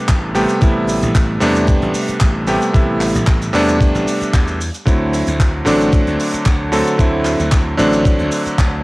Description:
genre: nu-disco, nu disco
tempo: 113 BPM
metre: 4/4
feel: swing 53% on 16ths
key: A dorian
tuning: A4 = 440 Hz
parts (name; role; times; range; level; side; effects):
- bright electric grand piano; accompaniment; 0.0-8.8 s; C3 to A4; -16 LUFS; equal; sidechain pumping, cassette tape, analog delay
- slap bass; bass; 0.1-8.8 s; A1 to E2; -21 LUFS; equal; sidechain pumping
- damped 70s drum kit; drums; 0.1-8.7 s; handclaps, hi-hat, shaker; -25 LUFS; equal; cassette tape
- electronic kick drum; drums; 0.1-8.7 s; none; -14 LUFS; equal; overdrive, cassette tape
room: light reverb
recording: home recording on cassette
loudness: -13 LUFS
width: side -22 dB against mid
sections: 0.0-8.8 A section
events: none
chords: 0.0 Am9; 4.9 D9

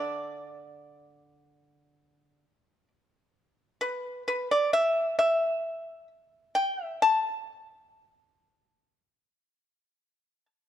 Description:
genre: chinese traditional, Chinese solo plucked strings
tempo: 55-68 BPM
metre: 4/4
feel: rubato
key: unclear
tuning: A4 = 440 Hz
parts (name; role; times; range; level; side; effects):
- pipa; solo; 0.0-10.5 s; D3 to A5; -25 LUFS; left 1 dB; none
room: light reverb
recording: dark, warm production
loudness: -25 LUFS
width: side -10 dB against mid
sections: 0.0-10.7 A section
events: none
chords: none

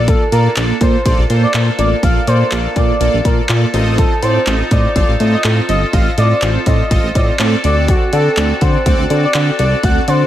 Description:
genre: dance-pop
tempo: 123 BPM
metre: 4/4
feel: straight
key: unclear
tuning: A4 = 440 Hz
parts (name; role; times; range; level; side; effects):
- big bright polysynth; accompaniment; 0.0-10.3 s; Bb3 to F5; -20 LUFS; right 2 dB; chorus, sidechain pumping
- bright woodwind section; sustained chords; 0.0-10.3 s; D3 to A4; -24 LUFS; equal; sidechain pumping
- chorused synth bass; bass; 0.0-10.2 s; G1 to D3; -15 LUFS; equal; sidechain pumping
- expressive portamento lead; melody; 0.1-10.3 s; F#4 to F#5; -19 LUFS; equal; chorus, sidechain pumping, tape echo
- house drum kit; drums; 0.1-10.2 s; handclaps, hi-hat, kick drum; -16 LUFS; equal; none
room: light reverb, digital ambience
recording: none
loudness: -11 LUFS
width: side -12 dB against mid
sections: 0.0-10.3 A section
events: none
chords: 0.0 Bbmaj7; 3.7 F7/A; 7.6 D7

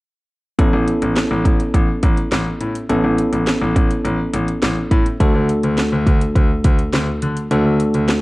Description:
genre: synth-pop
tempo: 104 BPM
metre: 4/4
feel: straight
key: unclear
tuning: A4 = 439 Hz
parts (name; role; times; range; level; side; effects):
- bell-like tine electric piano; accompaniment; 0.6-8.2 s; A3 to A4; -19 LUFS; equal; none
- clear concert grand piano; bass; 0.6-8.1 s; A1 to D3; -20 LUFS; left 1 dB; none
- house drum kit; drums; 0.6-8.2 s; hi-hat, kick drum, snare drum; -17 LUFS; equal; vintage 12-bit sampler grit
room: light reverb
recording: dark, warm production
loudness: -15 LUFS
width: side -20 dB against mid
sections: 0.6-8.2 A section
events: none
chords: 0.6 Aadd9; 5.2 D

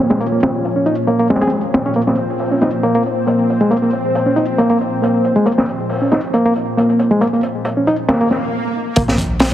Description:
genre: breakbeat, breaks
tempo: 137 BPM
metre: 4/4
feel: swing 54% on 16ths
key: Bb minor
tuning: A4 = 440 Hz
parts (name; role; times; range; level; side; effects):
- lush unison pad; sustained chords; 0.0-8.5 s; Bb2 to Db4; -20 LUFS; equal; chorus, sidechain pumping
- reed electric piano; riff; 0.0-9.2 s; Ab3 to Ab4; -16 LUFS; equal; ping-pong delay
- crunchy breakbeat drum kit; drums; 0.1-9.5 s; hi-hat, kick drum, snare drum; -18 LUFS; equal; low-pass filter on kick, low-pass filter on hats, low-pass filter on snare, low-pass filter on room
- swell and sub drop; sound effects; 8.3-9.5 s; none; -22 LUFS; right 1 dB; none
- saturated sub bass; bass; 9.0-9.5 s; Bb1; -21 LUFS; equal; none
room: moderate lush hall reverb, RT60 1.7 s, small room ambience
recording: heavily compressed radio sound, multiband compression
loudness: -13 LUFS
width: side -11 dB against mid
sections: 0.0-9.0 A section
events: swell 8.3-9.0; stop 8.5-9.0; impact 9.0-9.5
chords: 0.0 Bbm; 9.0 N.C.

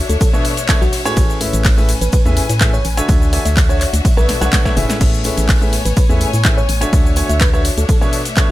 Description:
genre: piano house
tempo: 125 BPM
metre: 4/4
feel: straight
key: A major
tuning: A4 = 440 Hz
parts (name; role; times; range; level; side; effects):
- organ-like FM bass; bass; 0.0-7.9 s; F#1 to A2; -18 LUFS; equal; sidechain pumping
- dark studio string section; texture; 0.0-8.5 s; A3 to G#5; -25 LUFS; left 4 dB; sidechain pumping
- bell-like FM electric piano; melody; 0.1-8.0 s; F#4 to E5; -26 LUFS; equal; chorus, ping-pong delay
- house drum kit; drums; 0.1-8.5 s; crash cymbal, handclaps, hi-hat, ride cymbal, shaker, snare drum; -22 LUFS; equal; none
- tambourine; percussion; 0.1-8.5 s; none; -33 LUFS; left 4 dB; none
- damped 70s drum kit; drums; 0.2-8.5 s; hi-hat, shaker, snare drum; -32 LUFS; left 2 dB; none
- electronic kick drum; drums; 0.2-8.5 s; none; -15 LUFS; equal; none
- warm grand piano; riff; 0.3-8.5 s; A2 to F#5; -21 LUFS; equal; sidechain pumping, ping-pong delay
room: studio reverb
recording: none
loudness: -12 LUFS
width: side -16 dB against mid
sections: 0.0-8.5 A section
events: drum fill 4.3-5.0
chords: 0.2 Bm11; 1.2 Amaj9; 3.1 Dmaj9; 4.0 Bm11; 5.0 Amaj9; 6.9 Dmaj9; 7.9 Bm11

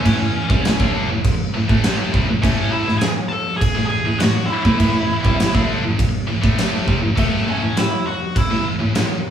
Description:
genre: quiet-loud alternative rock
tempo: 101 BPM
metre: 4/4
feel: straight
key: A major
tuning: A4 = 441 Hz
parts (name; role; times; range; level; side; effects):
- octave-fuzz lead guitar; melody; 0.0-8.7 s; A3 to A5; -23 LUFS; equal; distortion
- heavy high-gain guitar; riff; 0.0-9.2 s; A2 to D4; -22 LUFS; equal; distortion
- warm cello; bass; 0.0-9.2 s; C2 to A2; -22 LUFS; equal; none
- huge arena drum kit; drums; 0.1-9.1 s; crash cymbal, kick drum, snare drum; -19 LUFS; right 1 dB; none
room: moderate studio reverb, RT60 0.9 s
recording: band playing live in one room, studio reverb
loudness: -16 LUFS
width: side -9 dB against mid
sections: 0.0-9.3 A section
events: none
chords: 0.0 A

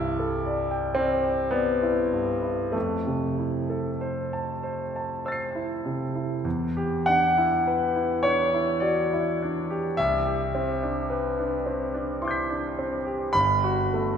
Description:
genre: classical, impressionist solo piano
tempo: 47-60 BPM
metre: 3/4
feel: rubato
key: unclear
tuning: A4 = 444 Hz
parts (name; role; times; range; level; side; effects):
- clear concert grand piano; solo; 0.0-14.2 s; G1 to C7; -23 LUFS; equal; none
room: wet church reverb, RT60 2.9 s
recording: recorded in a church or concert hall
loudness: -23 LUFS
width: side -7 dB against mid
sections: 0.0-6.5 A section; 6.5-14.2 B section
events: none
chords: 0.0 C69; 2.7 Fmaj7; 6.5 Em9; 10.0 Cmaj9; 13.4 Gsus2

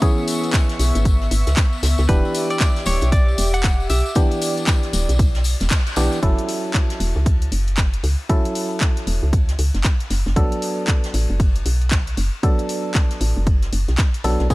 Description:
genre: deep house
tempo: 116 BPM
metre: 4/4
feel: swing 61% on 16ths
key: F# minor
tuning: A4 = 440 Hz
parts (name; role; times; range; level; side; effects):
- warm analog pad; sustained chords; 0.0-6.2 s; B3 to D6; -28 LUFS; equal; chorus, sidechain pumping
- percussive organ stab; stabs; 0.0-14.5 s; E3 to A4; -24 LUFS; right 1 dB; chorus, sidechain pumping, tape echo
- electronic kick drum; drums; 0.0-14.5 s; none; -17 LUFS; equal; overdrive
- house drum kit; drums; 0.0-14.5 s; handclaps, hi-hat; -27 LUFS; left 1 dB; overdrive
- jazz brush drum kit; drums; 0.0-14.5 s; ride cymbal, snare drum; -35 LUFS; left 2 dB; sidechain pumping on cymbals, high-pass filter on cymbals, high-pass filter on snare, high-pass filter on room
- tambourine; percussion; 0.0-6.2, 14.5 s; none; -31 LUFS; left 4 dB; none
- woody FM bass; bass; 0.8-14.5 s; D1 to C#2; -19 LUFS; equal; sidechain pumping
- direct-recorded clean electric guitar; melody; 2.1-4.1 s; B4 to F#5; -27 LUFS; equal; vintage 12-bit sampler grit, tape echo
room: small room ambience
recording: none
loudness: -17 LUFS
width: side -20 dB against mid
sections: 0.0-6.2 A section; 6.2-14.5 B section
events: drop 0.0-6.2; band accent 5.7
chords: 0.0 C#m7; 2.1 Em7; 6.2 F#m7; 10.4 Bm7

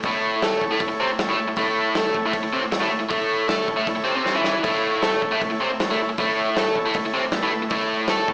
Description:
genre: garage rock duo or trio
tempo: 156 BPM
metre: 4/4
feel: straight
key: A major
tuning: A4 = 440 Hz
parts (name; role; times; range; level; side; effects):
- combo organ; sustained chords; 0.0-8.3 s; E4 to C#5; -29 LUFS; equal; spring reverb
- overdriven electric guitar; riff; 0.0-8.3 s; A2 to A4; -24 LUFS; equal; slapback echo
- vintage drum kit; drums; 0.0-8.3 s; crash cymbal, hi-hat, kick drum, snare drum; -30 LUFS; equal; none
room: light reverb, small room ambience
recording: live gig heard through the venue's PA, club reverb, small speaker sound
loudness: -22 LUFS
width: mono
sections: 0.0-8.3 A section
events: drum fill 4.3-4.6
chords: 0.0 A

